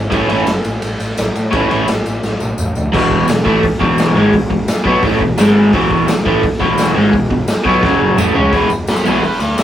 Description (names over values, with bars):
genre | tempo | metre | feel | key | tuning
garage rock duo or trio | 171 BPM | 4/4 | straight | E major | A4 = 440 Hz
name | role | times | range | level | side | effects
fuzz picked electric bass | bass | 0.0-9.6 s | E1 to A2 | -22 LUFS | equal | overdrive, tube saturation
crunchy overdriven guitar | riff | 0.1-9.2 s | E2 to E4 | -12 LUFS | equal | none
raw garage drum kit | drums | 0.1-9.6 s | crash cymbal, hi-hat, kick drum, ride cymbal, snare drum, toms | -18 LUFS | equal | none
tambourine | percussion | 0.1-9.6 s | none | -33 LUFS | left 4 dB | none
octave-fuzz lead guitar | melody | 8.9-9.6 s | G#4 to E5 | -18 LUFS | equal | distortion
room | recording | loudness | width
moderate small room reverb, RT60 0.5 s | rough rehearsal-room recording | -11 LUFS | side -11 dB against mid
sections
0.0-2.9 A section; 2.9-8.5 B section; 8.5-9.6 C section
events
drum fill 2.2-2.9, 7.8-8.5; lead electric guitar solo 8.5-9.6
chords
0.1 A; 2.9 E; 5.4 G#5; 5.7 E; 7.8 F#5; 8.2 E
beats
| 0.11 0.47 0.82 1.18 | 1.53 1.88 2.23 2.58 | 2.94 3.29 3.64 3.99 | 4.34 4.69 5.04 5.39 | 5.74 6.08 6.43 6.78 | 7.13 7.48 7.83 8.18 | 8.53 8.88 9.23 9.59